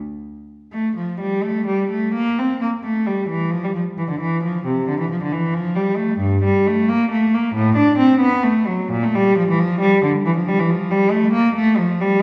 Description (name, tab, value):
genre	classical, baroque-style suite movement for unaccompanied cello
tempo	89 BPM (dotted quarters)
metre	12/8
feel	uneven beats, rubato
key	unclear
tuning	A4 = 440 Hz
part	rich cello	solo	0.7-12.2 s	G2 to D4	-19 LUFS	equal	none
room	wet recital hall reverb, RT60 1.4 s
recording	recorded in a church or concert hall, nothing above 10.4 kHz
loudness	-19 LUFS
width	mono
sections	0.7-12.2 A section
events	none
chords	none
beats	| 0.73 1.45 2.15 2.84 | 3.52 4.20 4.88 5.54 | 6.20 6.88 7.54 8.20 | 8.91 9.59 10.25 10.91 | 11.56 12.22